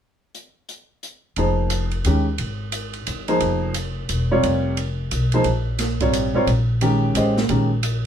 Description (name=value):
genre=modal jazz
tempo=176 BPM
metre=3/4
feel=swing 63% on 8ths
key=F minor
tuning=A4 = 441 Hz
part: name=open jazz drum kit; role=drums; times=0.3-7.9 s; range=hi-hat, kick drum, ride cymbal, snare drum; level=-28 LUFS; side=right 3 dB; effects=none
part: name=clear concert grand piano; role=accompaniment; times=1.4-7.7 s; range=C3 to Eb5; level=-20 LUFS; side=equal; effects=none
part: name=upright bass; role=bass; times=1.4-8.1 s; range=E1 to Eb2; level=-22 LUFS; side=equal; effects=none
room=light reverb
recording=minimal, uncompressed stereo recording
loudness=-19 LUFS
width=side -9 dB against mid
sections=0.4-1.4 A section; 1.4-8.1 B section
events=none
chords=0.4 N.C.; 1.4 Fm11; 5.5 Bbm11